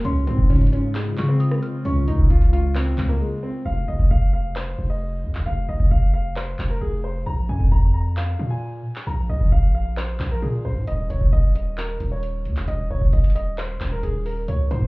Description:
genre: hip hop, trap.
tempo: 133 BPM.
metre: 4/4.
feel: half-time.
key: F minor.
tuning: A4 = 439 Hz.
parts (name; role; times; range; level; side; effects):
warm baby grand piano; melody; 0.0-14.9 s; Ab3 to Bb5; -29 LUFS; equal; none.
delicate synth tine bell; second line; 0.0-2.7 s; C6 to F6; -37 LUFS; left 2 dB; chorus, phaser, ping-pong delay.
hollow soft pad; sustained chords; 0.0-3.6 s; Db3 to F4; -29 LUFS; left 2 dB; ensemble chorus.
distorted 808-style bass; bass; 0.0-14.9 s; Eb1 to Db3; -23 LUFS; equal; distortion.
booming analog drum machine; drums; 0.0-14.9 s; handclaps, hi-hat, kick drum, rim click; -18 LUFS; equal; none.
room: digital ambience.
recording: heard muffled through a wall, club ambience, EQ.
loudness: -19 LUFS.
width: side -24 dB against mid.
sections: 0.0-3.7 A section; 3.7-14.9 B section.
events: break 3.2-3.7, 3.7-10.9.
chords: 0.0 Db; 3.7 F7(no3); 7.3 Bb5; 10.9 Eb7(no3).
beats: | 0.05 0.50 0.95 1.40 | 1.85 2.30 2.75 3.21 | 3.66 4.11 4.56 5.01 | 5.46 5.91 6.36 6.81 | 7.26 7.72 8.17 8.62 | 9.07 9.52 9.97 10.42 | 10.87 11.32 11.78 12.23 | 12.68 13.13 13.58 14.03 | 14.48.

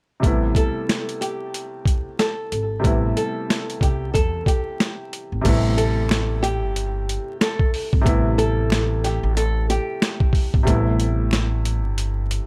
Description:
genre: hip hop, boom-bap hip-hop.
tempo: 92 BPM.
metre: 4/4.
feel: swing 59% on 16ths.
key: A minor.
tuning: A4 = 439 Hz.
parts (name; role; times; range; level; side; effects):
dark grand piano; accompaniment; 0.2-12.5 s; C3 to E4; -29 LUFS; equal; cassette tape, high-pass filter, low-pass filter, plate reverb.
upright bass; bass; 0.2-12.4 s; G1 to E2; -24 LUFS; equal; none.
boom bap sampler-style drum kit; drums; 0.2-12.5 s; crash cymbal, hi-hat, kick drum, snare drum; -23 LUFS; equal; none.
flamenco guitar; melody; 0.6-10.6 s; G4 to A4; -29 LUFS; equal; high-pass filter, low-pass filter, plate reverb.
finger snap; percussion; 6.1-11.5 s; none; -40 LUFS; equal; none.
room: light reverb.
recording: vinyl crackle.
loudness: -21 LUFS.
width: mono.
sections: 0.2-5.4 A section; 5.4-12.5 B section.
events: none.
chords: 0.2 Am9.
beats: | 0.23 0.88 1.54 2.19 | 2.84 3.49 4.14 4.80 | 5.45 6.10 6.75 7.41 | 8.06 8.71 9.36 10.02 | 10.67 11.32 11.97.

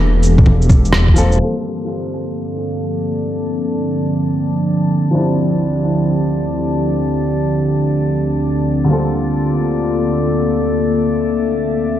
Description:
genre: future garage.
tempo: free time.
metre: none.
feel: none.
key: G dorian.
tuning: A4 = 440 Hz.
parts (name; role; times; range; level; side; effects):
warbly tape-like pad; sustained chords; 0.0-12.0 s; D2 to E5; -16 LUFS; equal; chorus, built-in reverb, sidechain pumping.
swelling detuned saw bass; bass; 0.0-1.4 s; E1; -14 LUFS; equal; sidechain pumping.
electronic shaker, bongos and rim click; drums; 0.2-1.4 s; none; -17 LUFS; equal; studio reverb.
electronic kick drum; drums; 0.4-1.1 s; none; -11 LUFS; equal; studio reverb.
felt-muted upright piano; accompaniment; 1.1-12.0 s; D3 to A4; -23 LUFS; left 1 dB; sidechain pumping, tape echo.
drifting glass-harmonics texture; texture; 2.5-12.0 s; D4 to D5; -25 LUFS; left 1 dB; chorus, built-in reverb.
room: moderate lush hall reverb, RT60 1.9 s.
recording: dark, warm production, vinyl crackle, low-pass filter.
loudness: -14 LUFS.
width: side -11 dB against mid.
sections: 0.0-1.4 A section; 1.4-12.0 B section.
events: band accent 0.9; filter sweep on ambient pad 1.4-12.0.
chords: 0.0 C13/E; 1.4 Gm11; 5.1 Dm11; 8.9 Gm11/D.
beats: free time.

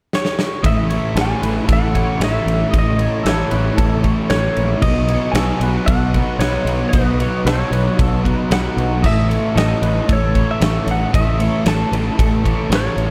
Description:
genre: rock, shoegaze and dream pop.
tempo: 114 BPM.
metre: 4/4.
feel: straight.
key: A lydian.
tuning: A4 = 440 Hz.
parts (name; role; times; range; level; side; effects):
direct-recorded clean electric guitar; melody; 0.1-13.1 s; B4 to A5; -26 LUFS; equal; lush chorus, slapback echo.
huge arena drum kit; drums; 0.1-13.1 s; crash cymbal, kick drum, ride cymbal, snare drum; -22 LUFS; equal; none.
twangy electric guitar; arpeggios; 0.6-13.1 s; A4 to D#5; -32 LUFS; equal; ensemble chorus, slapback echo.
crunchy overdriven guitar; riff; 0.6-13.1 s; A2 to A4; -27 LUFS; equal; reverse reverb.
thick fuzz guitar; riff; 0.6-13.1 s; A2 to B3; -24 LUFS; equal; distortion, analog chorus.
fingered electric bass; bass; 0.6-13.1 s; A1 to B1; -22 LUFS; equal; none.
phased string machine; sustained chords; 0.7-13.1 s; E4 to D#6; -36 LUFS; equal; none.
room: light reverb, small room ambience.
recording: none.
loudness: -17 LUFS.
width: mono.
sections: 0.6-13.1 A section.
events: drum fill 0.1-0.6.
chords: 0.0 N.C.; 0.6 A; 4.8 Badd9; 9.0 A.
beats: 0.12 | 0.65 1.17 1.69 2.22 | 2.74 3.26 3.79 4.31 | 4.83 5.36 5.88 6.41 | 6.93 7.46 7.99 8.51 | 9.04 9.56 10.09 10.62 | 11.14 11.67 12.20 12.72.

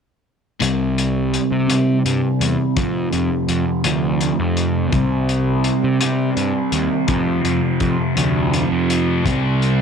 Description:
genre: psychedelic rock.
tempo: 56 BPM (dotted quarters).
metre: 6/8.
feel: straight.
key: unclear.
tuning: A4 = 440 Hz.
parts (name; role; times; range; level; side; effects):
thick fuzz guitar; riff; 0.6-9.8 s; F2 to C4; -18 LUFS; right 1 dB; distortion, phaser, low-pass filter.
fuzz picked electric bass; bass; 0.6-9.8 s; C2 to C3; -21 LUFS; equal; overdrive.
cloth-damped thuddy drum kit; drums; 0.6-9.8 s; hi-hat, kick drum; -24 LUFS; left 3 dB; none.
room: light reverb, small room ambience.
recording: 1960s-style stereo.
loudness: -16 LUFS.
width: side -6 dB against mid.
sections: 0.6-9.8 A section.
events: filter sweep on distorted electric guitar 0.6-9.8.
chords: 0.6 C5; 2.8 F5; 4.9 C5; 7.1 F5; 9.2 C5.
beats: | 0.62 1.70 | 2.77 3.85 | 4.93 6.01 | 7.09 8.17 | 9.25.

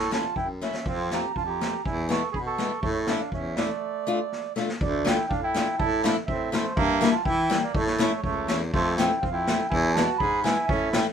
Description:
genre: alpine folk, alpine dance band.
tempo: 122 BPM.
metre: 2/4.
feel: straight.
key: D minor.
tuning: A4 = 439 Hz.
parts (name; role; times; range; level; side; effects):
mellow accordion; melody; 0.0-11.1 s; C5 to C#6; -28 LUFS; right 3 dB; none.
mellow trumpet; second line; 0.0-11.0 s; A3 to A4; -31 LUFS; right 3 dB; none.
warm baritone saxophone; bass; 0.0-11.0 s; C#2 to E3; -29 LUFS; equal; none.
picked old ladder-braced acoustic guitar; accompaniment; 0.1-11.1 s; G3 to F4; -27 LUFS; left 4 dB; none.
street-band drum kit; drums; 0.1-11.1 s; hi-hat, kick drum, snare drum; -30 LUFS; equal; none.
room: light reverb.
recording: minimal, uncompressed stereo recording.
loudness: -23 LUFS.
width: side -8 dB against mid.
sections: 0.0-4.8 A section; 4.8-11.1 A section.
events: drum fill 0.6, 4.3-4.8.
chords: 0.0 A; 0.9 F; 1.9 E; 2.8 A; 3.8 Dm; 5.8 Am; 6.8 Edim/G; 7.7 A; 8.7 F; 9.7 E.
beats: 0.37 | 0.87 1.37 | 1.87 2.36 | 2.84 3.33 | 3.82 4.32 | 4.81 5.31 | 5.80 6.28 | 6.77 7.26 | 7.75 8.24 | 8.74 9.23 | 9.72 10.21 | 10.70.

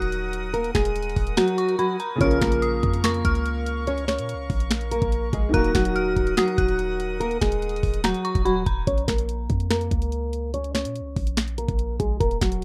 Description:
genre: hip hop, trap.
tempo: 144 BPM.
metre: 4/4.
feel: half-time.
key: Bb minor.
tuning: A4 = 442 Hz.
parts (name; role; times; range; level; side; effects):
nylon-string guitar; melody; 0.0-12.6 s; Gb3 to Db5; -28 LUFS; equal; low-pass filter.
dark detuned synth bell; second line; 0.0-8.9 s; Bb5 to Gb6; -33 LUFS; equal; chorus, tape echo.
felt-muted upright piano; accompaniment; 0.0-8.9 s; Db3 to Bb4; -31 LUFS; equal; low-pass filter.
warm studio string section; sustained chords; 0.0-8.8 s; Bb4 to Eb6; -38 LUFS; equal; none.
clean 808-style bass; bass; 0.0-12.6 s; Db1 to Bb2; -30 LUFS; equal; none.
trap drum kit; drums; 0.0-12.6 s; finger snaps, hi-hat, kick drum, snare drum; -28 LUFS; equal; none.
room: little or no reverb.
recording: rough home demo mix.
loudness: -24 LUFS.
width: mono.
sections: 0.0-8.9 A section; 8.9-12.6 B section.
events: kick muted 1.4-2.2; break 8.9-12.6.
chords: 0.0 Ebm; 2.2 Bbm; 5.5 Ebm; 8.9 Bbm.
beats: 0.12 | 0.54 0.96 1.37 1.79 | 2.21 2.62 3.04 3.46 | 3.87 4.29 4.71 5.12 | 5.54 5.96 6.37 6.79 | 7.21 7.62 8.04 8.46 | 8.87 9.29 9.71 10.12 | 10.54 10.96 11.37 11.79 | 12.21 12.62.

